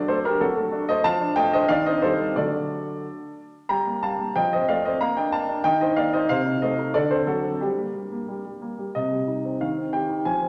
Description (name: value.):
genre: classical-period piano sonatina.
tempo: 92 BPM.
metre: 2/4.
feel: straight.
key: G minor.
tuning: A4 = 443 Hz.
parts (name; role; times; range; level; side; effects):
warm baby grand piano; solo; 0.0-10.5 s; C3 to Bb5; -24 LUFS; equal; none.
room: wet recital hall reverb, RT60 1.3 s.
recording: none.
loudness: -24 LUFS.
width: mono.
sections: 0.0-9.0 A section; 9.0-10.5 B section.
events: none.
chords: 0.0 D/F#; 1.0 Dm/F; 1.7 Cm/Eb; 2.4 D; 3.7 Gm; 4.3 F; 5.0 Bb; 5.6 Eb5; 6.3 Adim/C; 6.9 D7; 7.6 Gm; 9.0 Cm; 9.6 Cm/Eb.